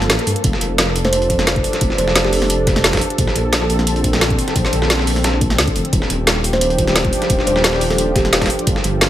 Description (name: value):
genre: liquid drum and bass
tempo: 175 BPM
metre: 4/4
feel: straight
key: unclear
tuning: A4 = 441 Hz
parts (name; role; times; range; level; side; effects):
- lush unison pad; sustained chords; 0.0-9.1 s; D3 to A4; -22 LUFS; equal; chorus, sidechain pumping
- dark detuned saw bass; bass; 0.0-9.1 s; Eb1 to G2; -20 LUFS; equal; none
- garage drum kit; drums; 0.0-9.1 s; hi-hat, snare drum; -18 LUFS; equal; none
- dusty soul sampler-style drum kit; drums; 0.1-9.1 s; hi-hat, snare drum; -22 LUFS; equal; high-pass filter on hats, high-pass filter on snare, high-pass filter on room
- electronic kick drum; drums; 0.4-8.7 s; none; -20 LUFS; equal; overdrive
- kalimba; melody; 1.0-2.7, 6.5-8.5 s; G4 to C5; -21 LUFS; right 1 dB; dub echo
room: light reverb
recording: none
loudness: -14 LUFS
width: side -12 dB against mid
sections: 0.0-9.1 A section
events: break 0.0-0.4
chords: 0.4 F6; 3.2 Bbmaj9; 5.9 Ebmaj9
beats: 0.10 | 0.44 0.78 1.13 1.47 | 1.81 2.16 2.50 2.84 | 3.18 3.53 3.87 4.21 | 4.56 4.90 5.24 5.58 | 5.93 6.27 6.61 6.96 | 7.30 7.64 7.98 8.33 | 8.67 9.01